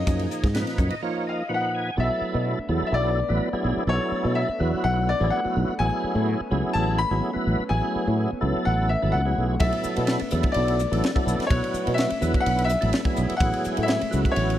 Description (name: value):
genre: electric jazz fusion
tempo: 126 BPM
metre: 4/4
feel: straight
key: B dorian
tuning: A4 = 438 Hz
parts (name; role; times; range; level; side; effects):
- bright baby grand piano; melody; 0.0-14.6 s; C#5 to B5; -28 LUFS; left 3 dB; none
- hollow-body jazz guitar; second line; 0.0-1.5 s; D#4; -40 LUFS; right 5 dB; none
- sustaining fretless electric bass; bass; 0.0-14.6 s; G#1 to B2; -24 LUFS; equal; lush chorus
- tonewheel organ; accompaniment; 0.1-14.6 s; A#2 to G#5; -27 LUFS; right 1 dB; slow rotary speaker, overdrive, chorus vibrato
- crisp fusion drum kit; drums; 0.1-1.0, 9.6-14.6 s; hi-hat, kick drum, ride cymbal, snare drum; -27 LUFS; equal; none
- lush unison pad; sustained chords; 2.0-14.6 s; G#3 to D4; -34 LUFS; equal; none
room: light reverb, studio reverb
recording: dark, warm production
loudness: -21 LUFS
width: side -12 dB against mid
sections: 0.0-2.0 A section; 2.0-14.6 B section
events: tonewheel organ fill 0.6-2.0; break 1.0-2.0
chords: 0.1 B6/F#; 2.0 Bm7; 5.8 Amaj9; 9.6 Bm7; 13.4 Amaj9